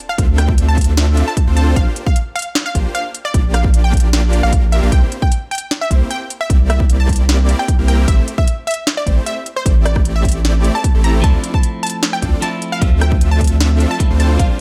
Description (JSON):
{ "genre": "future bass", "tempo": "152 BPM", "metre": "4/4", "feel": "half-time", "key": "D minor", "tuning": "A4 = 440 Hz", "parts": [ { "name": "unison pluck", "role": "melody", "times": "0.1-14.6 s", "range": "C5 to Bb5", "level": "-25 LUFS", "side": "equal", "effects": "sidechain pumping, tape echo" }, { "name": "supersaw chords", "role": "riff", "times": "0.2-14.5 s", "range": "A3 to F5", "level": "-26 LUFS", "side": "equal", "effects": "cassette tape, sidechain pumping" }, { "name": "saturated sub bass", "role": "bass", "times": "0.2-14.5 s", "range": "A1 to D2", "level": "-16 LUFS", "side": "equal", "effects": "sidechain pumping" }, { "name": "electronic kick drum", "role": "drums", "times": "0.2-14.5 s", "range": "none", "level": "-17 LUFS", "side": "equal", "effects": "studio reverb" }, { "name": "trap drum kit", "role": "drums", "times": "0.2-14.5 s", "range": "hi-hat, rim click, snare drum", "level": "-23 LUFS", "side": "equal", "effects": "studio reverb" }, { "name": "clean electric guitar", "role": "accompaniment", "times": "11.2-14.6 s", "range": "F3 to E5", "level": "-27 LUFS", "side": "equal", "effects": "sidechain pumping" } ], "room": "little or no reverb", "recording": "none", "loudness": "-15 LUFS", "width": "mono", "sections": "0.0-14.6 A section", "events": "none", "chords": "0.0 Dm7; 1.8 Bb69; 4.9 C7; 8.1 Am7; 11.2 Dm7" }